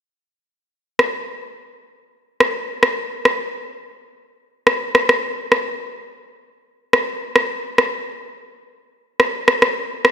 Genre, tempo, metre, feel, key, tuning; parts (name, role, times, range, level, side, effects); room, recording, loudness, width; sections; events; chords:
dancehall; 106 BPM; 4/4; straight
electronic rim click; drums; 1.0-10.1 s; -16 LUFS; equal
moderate lush hall reverb, RT60 2.0 s; -16 LUFS; side -9 dB against mid
0.7-10.1 A section